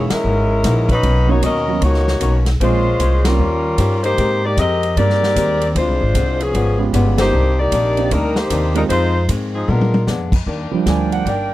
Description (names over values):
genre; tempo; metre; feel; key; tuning
jazz, big band swing; 153 BPM; 4/4; swing 64% on 8ths; Eb major; A4 = 439 Hz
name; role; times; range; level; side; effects
warm saxophone section; melody; 0.0-10.1 s; F3 to Eb5; -18 LUFS; left 1 dB; none
archtop guitar, miked and amplified; accompaniment; 0.0-11.5 s; F2 to C5; -26 LUFS; left 5 dB; none
warm concert grand piano; accompaniment; 0.0-11.5 s; F3 to Ab5; -21 LUFS; right 7 dB; none
upright bass; bass; 0.0-11.5 s; G1 to Bb2; -18 LUFS; equal; none
swinging big-band drum kit; drums; 0.1-11.4 s; crash cymbal, hi-hat, kick drum, ride cymbal, snare drum, toms; -23 LUFS; equal; none
mellow saxophone section; sustained chords; 10.5-11.5 s; D4 to G5; -27 LUFS; left 3 dB; none
room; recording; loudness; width
little or no reverb; dry, close 1970s-style studio recording; -14 LUFS; side -15 dB against mid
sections
0.0-10.5 A section; 10.5-11.5 B section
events
band accent 0.0, 3.2, 7.1; drum fill 9.7-10.1; grand piano solo 10.5-11.5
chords
0.0 Gb13; 1.0 Bmaj9; 2.6 Bbm9; 3.4 Eb13; 4.2 Abmaj9; 5.8 Dm7b5; 6.5 Db7#11; 7.3 Cm9; 8.9 Fm7; 9.7 Bb7b9; 10.5 Ebmaj7